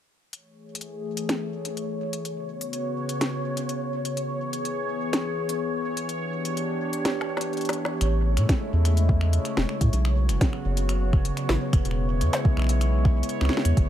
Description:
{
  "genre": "IDM",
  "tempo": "125 BPM",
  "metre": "4/4",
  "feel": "straight",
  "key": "A major",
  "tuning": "A4 = 440 Hz",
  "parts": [
    { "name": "warbly tape-like pad", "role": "sustained chords", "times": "0.7-13.9 s", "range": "C#3 to C#5", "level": "-29 LUFS", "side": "left 2 dB", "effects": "chorus, built-in reverb" },
    { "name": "organic electronic drum kit", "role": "drums", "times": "0.3-13.9 s", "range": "finger snaps, hi-hat, snare drum", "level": "-29 LUFS", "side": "equal", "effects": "overdrive, studio reverb" },
    { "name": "bubbling stepped-filter texture", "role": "texture", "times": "0.3-13.9 s", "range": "C#5", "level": "-34 LUFS", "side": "right 2 dB", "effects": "chorus, built-in reverb, sidechain pumping" },
    { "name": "round analog bass", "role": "bass", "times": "8.0-13.9 s", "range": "E1 to A2", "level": "-22 LUFS", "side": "equal", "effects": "none" },
    { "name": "electronic kick drum", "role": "drums", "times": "8.5-13.9 s", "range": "none", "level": "-22 LUFS", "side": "equal", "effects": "overdrive, studio reverb" }
  ],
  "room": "light reverb",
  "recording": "none",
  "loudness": "-23 LUFS",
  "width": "side -11 dB against mid",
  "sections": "0.3-8.0 A section; 8.0-13.9 B section",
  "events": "filter sweep on ambient pad 0.3-8.0; drum fill 7.1-8.0",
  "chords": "0.3 Amaj7; 2.3 Bsus2; 4.2 E6; 6.1 G6; 8.0 Amaj7; 9.9 Bsus2; 11.9 E6"
}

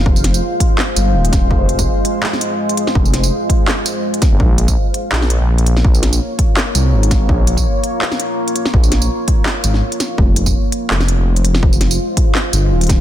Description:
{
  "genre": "half-time drum and bass",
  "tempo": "166 BPM",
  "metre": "4/4",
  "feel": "swing 55% on 16ths, half-time",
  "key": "F minor",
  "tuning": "A4 = 440 Hz",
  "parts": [
    { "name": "deep dark ambient pad", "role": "sustained chords", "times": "0.0-13.0 s", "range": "Ab3 to F5", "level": "-21 LUFS", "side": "equal", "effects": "chorus, built-in reverb, sidechain pumping" },
    { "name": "dark detuned saw bass", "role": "bass", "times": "0.0-13.0 s", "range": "Eb1 to C2", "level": "-14 LUFS", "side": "equal", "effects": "none" },
    { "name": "electronic kick drum", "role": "drums", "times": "0.1-13.0 s", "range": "none", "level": "-14 LUFS", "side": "equal", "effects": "small room reverb" },
    { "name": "industrial drum kit", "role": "drums", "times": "0.2-13.0 s", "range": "handclaps, hi-hat, snare drum, tambourine", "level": "-20 LUFS", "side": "equal", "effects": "small room reverb" }
  ],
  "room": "little or no reverb",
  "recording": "dense, heavily limited modern master",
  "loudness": "-12 LUFS",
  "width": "side -12 dB against mid",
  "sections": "0.0-13.0 A section",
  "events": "break 9.8-10.2",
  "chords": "0.0 Fm; 4.4 Bbm; 10.2 Fm"
}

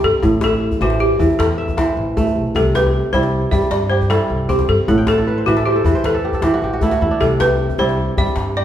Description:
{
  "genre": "west african traditional, West African string and xylophone music",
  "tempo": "103 BPM (dotted quarters)",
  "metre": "12/8",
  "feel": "straight",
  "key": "unclear",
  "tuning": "A4 = 440 Hz",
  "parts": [
    { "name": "balafon", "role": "melody", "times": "0.0-8.6 s", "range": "F#4 to E5", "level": "-19 LUFS", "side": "left 1 dB", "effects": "none" },
    { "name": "kora", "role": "arpeggios", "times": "0.0-8.6 s", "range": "A2 to A5", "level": "-18 LUFS", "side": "right 2 dB", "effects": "none" },
    { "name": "upright bass", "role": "bass", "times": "0.0-8.6 s", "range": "A1 to G2", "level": "-21 LUFS", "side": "equal", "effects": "none" },
    { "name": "djembe", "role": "percussion", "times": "0.2-8.5 s", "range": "none", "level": "-23 LUFS", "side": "left 3 dB", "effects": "none" }
  ],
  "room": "moderate recital hall reverb, RT60 1.5 s",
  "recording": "recorded in a church or concert hall",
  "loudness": "-14 LUFS",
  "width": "side -10 dB against mid",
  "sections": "0.0-8.6 A section",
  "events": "kora fill 4.9-7.2",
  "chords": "0.2 Am; 2.6 C; 4.9 A5; 7.2 C"
}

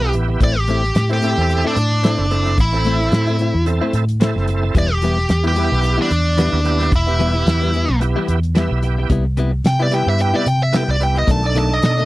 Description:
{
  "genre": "straight-eighth soul blues",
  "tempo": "110 BPM",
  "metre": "4/4",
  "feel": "swing 56% on 16ths",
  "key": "E minor",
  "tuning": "A4 = 440 Hz",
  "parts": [
    { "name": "biting lead guitar", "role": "melody", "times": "0.0-12.1 s", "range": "D4 to A5", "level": "-20 LUFS", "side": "equal", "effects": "overdrive" },
    { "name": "bright tonewheel organ", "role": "accompaniment", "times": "0.0-12.1 s", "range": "B3 to G5", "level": "-23 LUFS", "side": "right 5 dB", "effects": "slow rotary speaker, overdrive, chorus vibrato" },
    { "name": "direct-recorded clean electric guitar", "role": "stabs", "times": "0.0-12.1 s", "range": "A2 to E4", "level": "-22 LUFS", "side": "left 4 dB", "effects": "none" },
    { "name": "vintage muted fingered electric bass", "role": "bass", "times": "0.0-12.1 s", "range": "E1 to C3", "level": "-18 LUFS", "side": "equal", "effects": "none" },
    { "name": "damped 70s drum kit", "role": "drums", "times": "0.1-12.1 s", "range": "hi-hat, kick drum, snare drum", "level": "-19 LUFS", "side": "equal", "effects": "none" }
  ],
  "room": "little or no reverb",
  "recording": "dry, close 1970s-style studio recording, lossy compression artefacts",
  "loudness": "-14 LUFS",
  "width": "side -18 dB against mid",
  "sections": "0.0-12.1 A section",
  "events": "lead electric guitar solo 0.0-12.1; tonewheel organ fill 8.3-9.1",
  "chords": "0.4 Am; 4.7 Em; 9.1 Cmaj7; 11.3 B7#9"
}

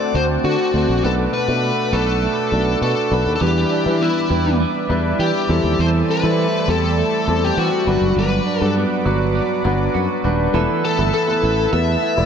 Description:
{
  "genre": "pop",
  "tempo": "101 BPM",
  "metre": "4/4",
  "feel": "straight",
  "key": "unclear",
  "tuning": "A4 = 440 Hz",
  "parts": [
    { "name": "bluesy overdriven lead guitar", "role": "melody", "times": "0.0-12.3 s", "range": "E4 to E5", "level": "-21 LUFS", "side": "left 3 dB", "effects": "distortion, ping-pong delay" },
    { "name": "clear concert grand piano", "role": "accompaniment", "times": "0.0-12.3 s", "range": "G2 to D5", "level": "-22 LUFS", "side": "left 3 dB", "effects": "none" },
    { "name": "lush unison pad", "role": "sustained chords", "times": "0.0-12.3 s", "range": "C4 to E6", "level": "-26 LUFS", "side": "right 1 dB", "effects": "chorus" },
    { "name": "clean electric guitar", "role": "riff", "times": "0.0-12.3 s", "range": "E3 to A4", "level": "-24 LUFS", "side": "right 9 dB", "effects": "lush chorus" },
    { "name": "sustaining fretless electric bass", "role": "bass", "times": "0.1-12.3 s", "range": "D#1 to E3", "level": "-20 LUFS", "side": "right 1 dB", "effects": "none" }
  ],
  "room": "moderate lush hall reverb, RT60 2.9 s",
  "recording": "dark, warm production",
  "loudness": "-16 LUFS",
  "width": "side -7 dB against mid",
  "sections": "0.0-10.5 A section; 10.5-12.3 B section",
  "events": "none",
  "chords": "0.0 D7; 1.0 Bm7; 3.4 Em7; 5.5 Am7; 7.9 Gmaj7; 10.5 Esus4"
}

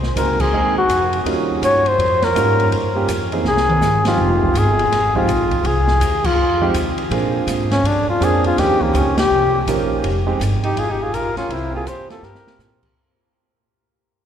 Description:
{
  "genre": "jazz, small-group swing and bop",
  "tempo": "164 BPM",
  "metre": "4/4",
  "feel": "swing 64% on 8ths",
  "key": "unclear",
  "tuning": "A4 = 440 Hz",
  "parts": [
    { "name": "upright bass", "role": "bass", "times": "0.0-12.9 s", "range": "F1 to Bb2", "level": "-21 LUFS", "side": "equal", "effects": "none" },
    { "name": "open jazz drum kit", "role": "drums", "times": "0.0-12.9 s", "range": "crash cymbal, hi-hat, kick drum, ride cymbal, snare drum, toms", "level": "-25 LUFS", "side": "equal", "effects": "none" },
    { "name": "trumpet with bucket mute", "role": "melody", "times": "0.2-12.6 s", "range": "Bb3 to Db5", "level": "-18 LUFS", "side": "left 2 dB", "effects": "none" },
    { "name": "warm concert grand piano", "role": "accompaniment", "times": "0.2-12.6 s", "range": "Fb3 to Bb4", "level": "-22 LUFS", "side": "right 4 dB", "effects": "none" },
    { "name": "clear alto saxophone", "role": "second line", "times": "10.6-12.6 s", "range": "C4 to G4", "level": "-29 LUFS", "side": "right 3 dB", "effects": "none" }
  ],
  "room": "wet cathedral reverb, RT60 5.9 s",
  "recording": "recorded in a church or concert hall",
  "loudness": "-15 LUFS",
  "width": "side -9 dB against mid",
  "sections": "0.0-10.0 A section; 10.0-13.0 B section",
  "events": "band accent 0.3, 4.0, 6.2, 9.1; drum fill 3.5-3.8, 12.2-12.6; fade-out 10.0-13.0",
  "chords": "0.0 Ab9; 1.3 Eb9; 2.7 Gm7b5; 3.5 Cm; 4.2 Fm7; 7.1 Bb9; 8.6 Eb9; 10.0 Fm7; 11.5 C7"
}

